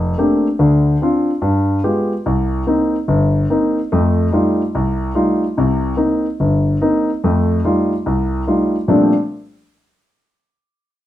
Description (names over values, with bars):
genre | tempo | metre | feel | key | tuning
jazz | 145 BPM | 4/4 | swing 65% on 8ths | Bb major | A4 = 440 Hz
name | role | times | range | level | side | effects
warm concert grand piano | solo | 0.0-9.1 s | F1 to G4 | -14 LUFS | left 1 dB | none
room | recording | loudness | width
wet studio reverb, RT60 0.6 s | band playing live in one room | -14 LUFS | side -13 dB against mid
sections
0.0-2.2 A section; 2.2-8.9 B section; 8.9-10.5 C section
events
none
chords
0.0 Bbmaj13; 0.6 Dm7; 1.4 G7b9; 2.2 Cm7; 3.9 F9; 5.6 Cm7; 7.2 F9; 8.9 Bbmaj13